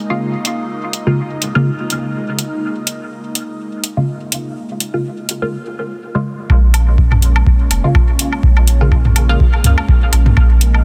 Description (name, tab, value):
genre	dub techno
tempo	124 BPM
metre	4/4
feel	swing 56% on 16ths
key	Bb minor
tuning	A4 = 440 Hz
part	airy breathy pad	sustained chords	0.0-10.8 s	Ab3 to Eb4	-28 LUFS	equal	chorus, phaser, sidechain pumping
part	filtered dub chord stab	stabs	0.1-9.4 s	Db3 to F4	-23 LUFS	equal	phaser, sidechain pumping, dub echo
part	electronic hi-hat	drums	0.4-10.7 s	none	-21 LUFS	equal	low-pass filter on hats
part	pure sine sub bass	bass	6.5-10.8 s	F1 to Db2	-15 LUFS	equal	sidechain pumping
part	electronic kick drum	drums	6.5-10.5 s	none	-15 LUFS	equal	none
part	electronic woodblock and toms	percussion	6.5-10.8 s	none	-23 LUFS	equal	sidechain pumping on perc, sidechain pumping on toms, dub echo
room	light reverb, digital ambience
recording	dense, heavily limited modern master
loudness	-15 LUFS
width	mono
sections	0.0-6.5 A section; 6.5-10.8 B section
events	none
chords	0.0 Bbm7